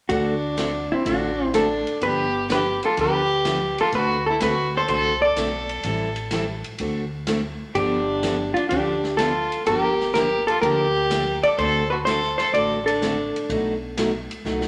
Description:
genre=country, western swing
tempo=125 BPM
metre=4/4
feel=swing 69% on 8ths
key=D mixolydian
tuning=A4 = 441 Hz
part: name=vintage hollow-body jazz guitar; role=melody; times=0.1-14.3 s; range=E4 to D5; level=-25 LUFS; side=equal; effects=none
part: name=rich fiddle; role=second line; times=0.1-13.4 s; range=C4 to A4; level=-27 LUFS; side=equal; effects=none
part: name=picked steel-string acoustic guitar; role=accompaniment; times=0.1-14.7 s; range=B2 to A4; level=-30 LUFS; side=equal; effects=none
part: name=upright bass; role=bass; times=0.1-14.7 s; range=G1 to D2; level=-34 LUFS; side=equal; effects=none
part: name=swinging big-band drum kit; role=drums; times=0.1-14.7 s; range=hi-hat, ride cymbal, snare drum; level=-36 LUFS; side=equal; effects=none
room=wet studio reverb, RT60 0.9 s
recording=none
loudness=-22 LUFS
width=mono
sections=0.1-14.7 A section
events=drum fill 14.4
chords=0.1 D7; 2.0 G7; 3.9 D7; 5.8 Am7; 6.8 D7; 7.8 G7; 9.7 Gm7; 11.6 D7; 13.5 B7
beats=| 0.09 0.57 1.05 1.53 | 2.01 2.49 2.97 3.45 | 3.93 4.41 4.88 5.36 | 5.84 6.32 6.79 7.27 | 7.75 8.23 8.71 9.19 | 9.66 10.14 10.62 11.10 | 11.58 12.06 12.54 13.01 | 13.49 13.97 14.45

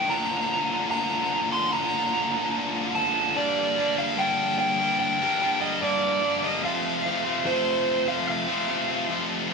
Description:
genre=rock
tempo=73 BPM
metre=4/4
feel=straight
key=G minor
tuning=A4 = 436 Hz
part: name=crunchy overdriven guitar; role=melody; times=0.0-9.1 s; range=C5 to C6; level=-25 LUFS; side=right 2 dB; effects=none
part: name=distorted electric guitar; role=riff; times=0.0-9.5 s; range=F2 to D4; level=-26 LUFS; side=left 2 dB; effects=overdrive
room=wet stone room reverb, RT60 1.0 s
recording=band playing live in one room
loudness=-22 LUFS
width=side -4 dB against mid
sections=0.0-3.4 A section; 3.4-9.5 B section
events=build-up 0.0-3.4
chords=0.1 Bb; 3.4 Gm; 6.6 F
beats=| 0.10 0.91 1.73 2.55 | 3.37 4.19 5.00 5.82 | 6.64 7.46 8.28 9.09

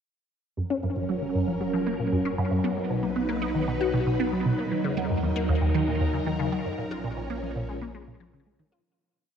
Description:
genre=ambient, sequencer-driven space music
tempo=116 BPM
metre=4/4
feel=straight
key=F# major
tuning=A4 = 440 Hz
part: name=phased string machine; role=sustained chords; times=0.6-8.8 s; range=E#3 to B4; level=-28 LUFS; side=equal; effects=ensemble chorus, phaser, shimmer reverb
part: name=resonant blip pluck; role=riff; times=0.6-8.8 s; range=D#2 to F#4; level=-27 LUFS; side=right 1 dB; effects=phaser, analog chorus, tape echo, shimmer reverb
part: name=round analog bass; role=bass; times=0.6-8.8 s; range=F#1 to D#2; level=-35 LUFS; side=equal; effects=none
room=moderate plate reverb, RT60 3.5 s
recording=dark, warm production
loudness=-24 LUFS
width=side -8 dB against mid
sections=0.6-8.8 A section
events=fade-in on analog synth bass 0.6-8.8; fade-out 6.1-8.8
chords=0.6 F#; 2.6 B; 4.7 D#m; 6.8 A#m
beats=| 0.57 1.09 1.61 2.13 | 2.64 3.16 3.68 4.20 | 4.71 5.23 5.75 6.26 | 6.78 7.30 7.82 8.33

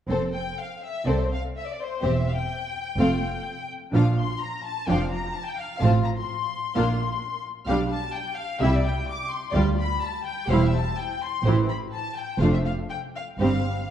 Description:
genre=quick classical-period movement for string orchestra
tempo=127 BPM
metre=4/4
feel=rubato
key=F major, C major from 7.7 s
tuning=A4 = 440 Hz
part: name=warm studio violin section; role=second line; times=0.1-13.6 s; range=F4 to F5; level=-31 LUFS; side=left 3 dB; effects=none
part: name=warm studio viola section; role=accompaniment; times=0.1-13.6 s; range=E3 to F4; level=-28 LUFS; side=right 1 dB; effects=none
part: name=rich studio cello section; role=bass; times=0.1-13.8 s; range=C2 to C3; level=-29 LUFS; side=right 2 dB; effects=none
part: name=rich studio double bass section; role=bass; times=0.1-13.8 s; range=E1 to D2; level=-26 LUFS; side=right 2 dB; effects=none
part: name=rich studio violin section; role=melody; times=0.3-13.9 s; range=C5 to D6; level=-31 LUFS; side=left 5 dB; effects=none
room=wet scoring stage reverb, RT60 1.8 s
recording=dark, warm production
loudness=-23 LUFS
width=side -10 dB against mid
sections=0.1-13.9 A section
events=none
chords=0.1 F; 2.0 C/E; 3.0 F; 3.9 Bb; 5.8 F/A; 6.8 Bb; 7.7 G7/B; 8.6 C; 9.5 G5/D; 10.5 C/E; 11.5 Am7; 12.4 Dm7/F; 13.4 C5/G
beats=| 0.10 0.59 1.07 1.55 | 2.03 2.51 2.99 3.46 | 3.93 4.41 4.88 5.35 | 5.82 6.29 6.75 7.22 | 7.68 8.14 8.61 9.08 | 9.55 10.02 10.50 10.98 | 11.45 11.92 12.40 12.89 | 13.39

